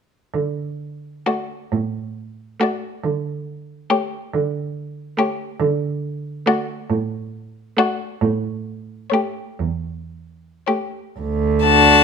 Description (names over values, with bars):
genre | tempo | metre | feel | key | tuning
classical, slow romantic movement for string quartet | 35-48 BPM (dotted quarters) | 6/8 | rubato | D major | A4 = 438 Hz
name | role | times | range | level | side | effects
warm cello | bass | 0.3-12.0 s | D2 to D3 | -22 LUFS | right 4 dB | none
rich violin | melody | 1.3-12.0 s | C#5 to A5 | -17 LUFS | left 10 dB | none
clear violin | second line | 1.3-12.0 s | F#4 to G4 | -21 LUFS | left 4 dB | none
rich viola | accompaniment | 1.3-12.0 s | A3 to D4 | -23 LUFS | right 2 dB | none
room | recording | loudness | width
light reverb | close, detailed microphones | -20 LUFS | side -6 dB against mid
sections
0.3-11.2 A section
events
none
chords
0.3 D; 3.0 A7/D; 5.6 D; 8.2 A7; 11.2 D